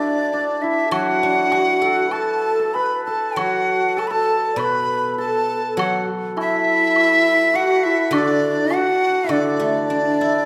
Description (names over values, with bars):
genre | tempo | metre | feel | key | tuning
chinese traditional, Chinese chamber ensemble | 101 BPM | 4/4 | rubato | D gong mode | A4 = 440 Hz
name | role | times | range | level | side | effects
breathy bright large dizi | melody | 0.0-10.5 s | D5 to B5 | -22 LUFS | equal | none
hammered dulcimer | second line | 0.0-10.5 s | D4 to B4 | -27 LUFS | equal | none
low xiao | second line | 0.0-10.5 s | D4 to D5 | -26 LUFS | equal | none
guzheng | accompaniment | 0.0-10.5 s | B2 to A4 | -28 LUFS | equal | none
woodblock | percussion | 0.9-9.4 s | none | -35 LUFS | equal | none
room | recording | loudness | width
wet recital hall reverb, RT60 1.6 s | recorded in a church or concert hall | -19 LUFS | mono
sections
0.0-10.5 A section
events
none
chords
none